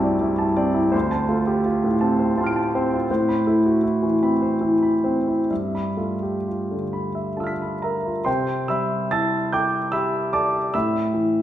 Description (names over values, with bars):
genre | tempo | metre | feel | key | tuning
classical, impressionist solo piano | 62-86 BPM | 3/4 | rubato | C major | A4 = 440 Hz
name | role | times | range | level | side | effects
warm concert grand piano | solo | 0.0-11.4 s | C2 to D7 | -19 LUFS | equal | none
room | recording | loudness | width
wet recital hall reverb, RT60 1.4 s | heard from further back in the room | -19 LUFS | side -12 dB against mid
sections
0.0-8.3 A section; 8.3-11.4 B section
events
none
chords
0.0 C69; 0.9 Dm7; 3.1 Amadd9; 5.5 G13; 8.3 C6; 10.7 Asus2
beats
0.23 | 0.94 1.67 2.37 | 3.10 3.82 4.60 | 5.50 6.46 7.38 | 8.27 9.12 9.95 | 10.74